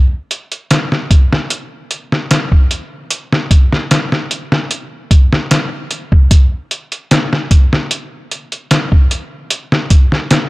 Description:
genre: trip hop.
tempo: 75 BPM.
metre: 4/4.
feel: straight.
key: none.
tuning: none.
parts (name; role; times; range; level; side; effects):
trip hop sampler-style drum kit; drums; 0.3-10.5 s; hi-hat, kick drum, snare drum; -10 LUFS; equal; none.
room: light reverb.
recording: none.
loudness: -11 LUFS.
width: side -22 dB against mid.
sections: 0.0-10.5 A section.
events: none.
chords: none.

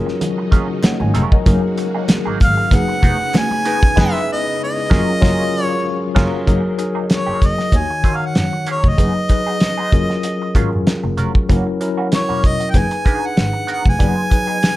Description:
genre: lush 1970s-style soul.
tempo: 96 BPM.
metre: 4/4.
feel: swing 54% on 16ths.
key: F# major.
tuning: A4 = 440 Hz.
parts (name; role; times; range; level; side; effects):
tine electric piano; accompaniment; 0.0-14.8 s; D#3 to A#5; -22 LUFS; left 3 dB; medium stereo tremolo.
string machine, violins; sustained chords; 0.0-6.5 s; C#3 to F#4; -29 LUFS; equal; ensemble chorus.
electric guitar through a small old amp; riff; 0.1-14.7 s; E3 to A#4; -28 LUFS; right 6 dB; wah.
cloth-damped thuddy drum kit; drums; 0.1-14.8 s; crash cymbal, hi-hat, kick drum, snare drum; -15 LUFS; equal; none.
congas; percussion; 0.2-3.6 s; none; -25 LUFS; right 2 dB; none.
group handclap; percussion; 0.8-3.5 s; none; -34 LUFS; left 1 dB; none.
dark double bass; bass; 1.0-14.1 s; E1 to F#2; -20 LUFS; equal; none.
warm harmonica; melody; 2.4-14.8 s; C#5 to G#5; -20 LUFS; equal; slapback echo.
room: studio reverb.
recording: dark, warm production.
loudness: -14 LUFS.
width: side -16 dB against mid.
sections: 0.0-6.5 A section; 6.5-14.8 B section.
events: tine electric piano fill 0.5-1.5; band accent 4.0-6.5.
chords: 0.0 D#m11; 1.5 F#69; 2.7 B6; 4.0 Emaj7/F#; 4.9 D#m11/F#; 6.5 F#69; 7.7 D#m7; 9.0 B6/F#; 9.9 D#m11/F#; 11.5 F#7; 12.7 B6/F#.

